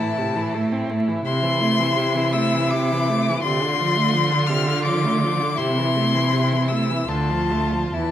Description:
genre	classical, slow romantic movement for string quartet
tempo	66-88 BPM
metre	3/4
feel	rubato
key	A minor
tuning	A4 = 442 Hz
part	rich violin	melody	0.0-8.1 s	A5 to F6	-24 LUFS	left 6 dB	none
part	rich violin	second line	0.0-8.1 s	E4 to F4	-26 LUFS	left 2 dB	none
part	warm viola	accompaniment	0.0-8.1 s	C3 to C4	-24 LUFS	right 2 dB	none
part	clear cello	bass	0.0-8.1 s	D2 to D3	-23 LUFS	right 2 dB	none
room	wet recital hall reverb, RT60 1.6 s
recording	vinyl crackle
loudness	-18 LUFS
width	side -10 dB against mid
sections	0.0-8.1 A section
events	none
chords	0.0 Am; 1.2 Am/C; 3.4 Dm7/C; 5.6 Am/C; 7.1 Dm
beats	0.53 | 1.25 1.96 2.70 | 3.42 4.11 4.83 | 5.57 6.31 7.07 | 7.93

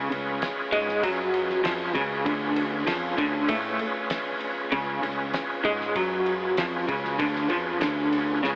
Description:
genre	psychedelic rock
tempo	97 BPM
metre	4/4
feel	straight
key	unclear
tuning	A4 = 440 Hz
part	overdriven tonewheel organ	sustained chords	0.0-8.6 s	C#4 to B4	-32 LUFS	equal	slow rotary speaker, chorus vibrato
part	electric guitar through a small old amp	riff	0.0-8.6 s	C#3 to A3	-29 LUFS	equal	tremolo
part	fuzz fingered electric bass	bass	0.0-8.6 s	C#2 to A2	-38 LUFS	equal	overdrive
part	cloth-damped thuddy drum kit	drums	0.1-8.6 s	kick drum, ride cymbal, snare drum	-36 LUFS	equal	none
room	wet huge ambient reverb, RT60 7.6 s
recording	dreamy mix soaked in reverb, AM radio sound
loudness	-26 LUFS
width	mono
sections	0.0-8.6 A section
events	none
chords	0.0 C#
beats	0.42 1.03 1.65 | 2.27 2.88 3.50 4.11 | 4.73 5.34 5.96 6.58 | 7.20 7.81 8.43

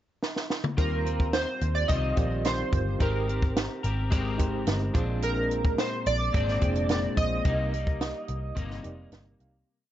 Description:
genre	indie pop, bedroom pop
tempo	108 BPM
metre	4/4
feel	straight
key	Eb major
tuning	A4 = 440 Hz
part	compact cocktail drum kit	drums	0.2-9.5 s	hi-hat, kick drum, snare drum, toms	-28 LUFS	equal	none
part	chorused retro synth keys	melody	0.8-9.1 s	Bb4 to Eb5	-30 LUFS	right 1 dB	ensemble chorus, tape echo
part	electric guitar at the edge of break-up	accompaniment	0.8-9.9 s	Bb2 to Bb4	-33 LUFS	left 2 dB	analog chorus, vibrato effect
part	reed electric piano	accompaniment	0.8-9.7 s	D4 to F5	-38 LUFS	right 5 dB	fast tremolo
part	vintage muted picked electric bass	bass	0.8-9.6 s	F1 to Eb2	-30 LUFS	equal	none
room	light reverb, small room ambience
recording	dark, warm production, nothing above 7.7 kHz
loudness	-25 LUFS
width	side -12 dB against mid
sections	0.0-0.8 pickup bar; 0.8-9.7 verse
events	drum fill 0.2-0.8; fade-out 7.5-9.7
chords	0.0 N.C.; 0.8 Eb69; 3.0 Abmaj9; 4.9 Bb9; 7.5 Cm7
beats	0.22 | 0.78 1.34 1.89 2.45 | 3.00 3.56 4.12 4.67 | 5.23 5.78 6.34 6.89 | 7.45 8.01 8.56 9.12

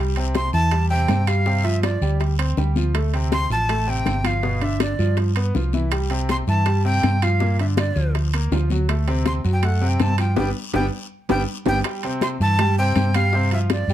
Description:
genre	latin, salsa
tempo	162 BPM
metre	4/4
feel	straight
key	C major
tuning	A4 = 440 Hz
part	bright grand piano	accompaniment	0.0-13.9 s	Bb2 to G5	-26 LUFS	equal	none
part	hollow-body short-scale fingered electric bass	bass	0.0-13.9 s	G1 to G2	-20 LUFS	equal	none
part	bongos	percussion	0.2-13.9 s	none	-29 LUFS	left 7 dB	none
part	congas	percussion	0.2-13.9 s	none	-28 LUFS	left 4 dB	none
part	timbales	percussion	0.2-13.9 s	none	-31 LUFS	right 8 dB	none
part	guiro	percussion	0.3-13.9 s	none	-39 LUFS	left 7 dB	none
part	breathy bright jazz flute	melody	0.4-13.9 s	D5 to C6	-25 LUFS	equal	plate reverb
room	light reverb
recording	dark, warm production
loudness	-18 LUFS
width	side -12 dB against mid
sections	0.0-11.9 A section; 11.9-13.9 A section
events	band accent 10.4-11.9; drum fill 11.1-11.9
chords	0.0 C; 1.5 G7sus4; 2.9 Dm7; 4.4 G7; 5.9 C6; 7.4 Gm7; 8.9 D7; 10.4 G; 11.9 C; 13.3 G7sus4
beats	0.34 0.72 1.09 | 1.46 1.83 2.21 2.58 | 2.95 3.32 3.69 4.06 | 4.43 4.81 5.18 5.55 | 5.92 6.29 6.66 7.04 | 7.41 7.78 8.15 8.52 | 8.89 9.26 9.63 10.00 | 10.37 10.74 11.11 11.48 | 11.85 12.22 12.59 12.96 | 13.33 13.70

